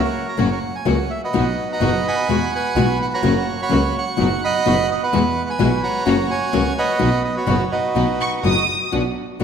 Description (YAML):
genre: tango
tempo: 127 BPM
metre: 4/4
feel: rubato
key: B major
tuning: A4 = 439 Hz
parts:
  - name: bandoneon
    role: melody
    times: 0.0-9.4 s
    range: D#4 to C#6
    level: -21 LUFS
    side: right 4 dB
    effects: tape echo
  - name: warm studio string section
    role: stabs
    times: 0.0-9.4 s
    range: G#3 to F#4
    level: -28 LUFS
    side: right 2 dB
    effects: none
  - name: rich double bass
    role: bass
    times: 0.0-9.4 s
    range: F#1 to E2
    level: -23 LUFS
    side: right 2 dB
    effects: none
  - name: nylon-string guitar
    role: accompaniment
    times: 0.4-9.4 s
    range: B2 to F#4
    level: -21 LUFS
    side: left 5 dB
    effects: none
  - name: warm studio violin section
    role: second line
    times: 8.2-8.9 s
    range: C#6 to D#6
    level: -22 LUFS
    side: right 1 dB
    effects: none
room: moderate scoring stage reverb, RT60 2.0 s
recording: none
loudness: -17 LUFS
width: side -7 dB against mid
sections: 0.0-8.9 A section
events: none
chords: 0.0 F#; 1.3 B; 2.3 Eadd9; 3.2 F#; 4.2 B/F#; 5.1 Eadd9; 6.1 F#; 7.0 B; 8.9 Bm